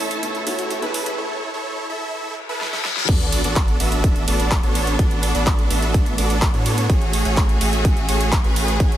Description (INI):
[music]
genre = EDM, festival progressive house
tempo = 126 BPM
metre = 4/4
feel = straight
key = unclear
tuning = A4 = 435 Hz
[part]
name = warm grand piano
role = accompaniment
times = 0.0-1.2 s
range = A2 to B4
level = -31 LUFS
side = left 1 dB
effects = sidechain pumping, tape echo
[part]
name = clear symphonic string section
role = sustained chords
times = 0.0-9.0 s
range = A3 to E6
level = -28 LUFS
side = left 1 dB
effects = sidechain pumping
[part]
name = supersaw chords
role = riff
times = 0.0-9.0 s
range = A3 to E5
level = -24 LUFS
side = right 2 dB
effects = sidechain pumping, tape echo
[part]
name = saturated sub bass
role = bass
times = 0.0-9.0 s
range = A1 to A2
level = -23 LUFS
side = equal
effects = sidechain pumping
[part]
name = riser, reverse cymbal and sub drop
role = sound effects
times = 0.0-5.0 s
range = none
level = -29 LUFS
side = left 2 dB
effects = none
[part]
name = big-room dance drum kit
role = drums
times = 0.1-9.0 s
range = crash cymbal, handclaps, hi-hat, ride cymbal, snare drum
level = -26 LUFS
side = right 1 dB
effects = none
[part]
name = electronic kick drum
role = drums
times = 3.1-8.9 s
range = none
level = -18 LUFS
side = equal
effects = none
[sound]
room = little or no reverb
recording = high-pass filter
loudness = -17 LUFS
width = side -12 dB against mid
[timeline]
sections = 0.0-3.1 A section; 3.1-9.0 B section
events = build-up 0.0-3.1; riser 0.0-1.2; filter sweep 0.0-3.1; reverse cymbal 2.4-3.1; drum fill 2.6-3.1; drop 3.1-9.0; impact 3.1-5.0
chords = 0.0 A; 3.1 Bm7/A; 6.9 F#madd9/A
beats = 0.23 0.71 | 1.18 1.66 2.13 2.61 | 3.09 3.56 4.04 4.51 | 4.99 5.47 5.94 6.42 | 6.90 7.37 7.85 8.32 | 8.80